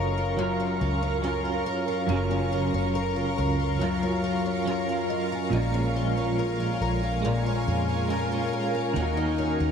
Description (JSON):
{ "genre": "dream pop", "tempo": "70 BPM", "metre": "4/4", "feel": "straight", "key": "F# major", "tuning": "A4 = 440 Hz", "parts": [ { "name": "clean electric guitar", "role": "accompaniment", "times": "0.0-9.7 s", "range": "F#2 to A#4", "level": "-29 LUFS", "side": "right 4 dB", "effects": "tremolo, ensemble chorus" }, { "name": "shimmering ambient pad", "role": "sustained chords", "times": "0.0-9.7 s", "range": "F#4 to C#6", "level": "-31 LUFS", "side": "right 2 dB", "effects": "chorus, built-in reverb" }, { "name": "picked twelve-string acoustic guitar", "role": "arpeggios", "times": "0.0-9.7 s", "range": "F#2 to A#4", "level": "-28 LUFS", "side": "left 4 dB", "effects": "wide subtle chorus, tape echo" }, { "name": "vintage muted fingered electric bass", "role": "bass", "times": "0.0-9.7 s", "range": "F#1 to E#2", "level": "-30 LUFS", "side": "equal", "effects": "none" }, { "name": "small celesta", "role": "texture", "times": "2.1-9.3 s", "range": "C#5 to A#5", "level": "-43 LUFS", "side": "right 2 dB", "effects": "none" } ], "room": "moderate huge ambient reverb, RT60 5.4 s", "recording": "dark, warm production", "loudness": "-24 LUFS", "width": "side -7 dB against mid", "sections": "0.0-9.7 A section", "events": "none", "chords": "0.0 F#maj7; 5.5 A#m7; 9.0 D#m7" }